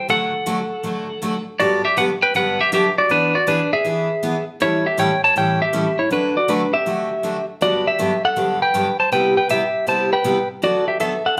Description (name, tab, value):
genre	country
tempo	159 BPM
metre	4/4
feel	swing 66% on 8ths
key	G major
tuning	A4 = 438 Hz
part	clean lap steel guitar	melody	0.0-11.4 s	D4 to A5	-20 LUFS	equal	none
part	picked steel-string acoustic guitar	accompaniment	0.1-11.4 s	G2 to A4	-25 LUFS	equal	none
room	wet large studio reverb, RT60 0.9 s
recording	band playing live in one room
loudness	-19 LUFS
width	mono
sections	0.0-1.6 A section; 1.6-11.4 B section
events	none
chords	0.1 D; 1.6 Gmaj7; 3.1 E7; 4.6 A7; 6.1 D; 7.6 Gmaj7; 9.1 Cmaj7; 10.6 D6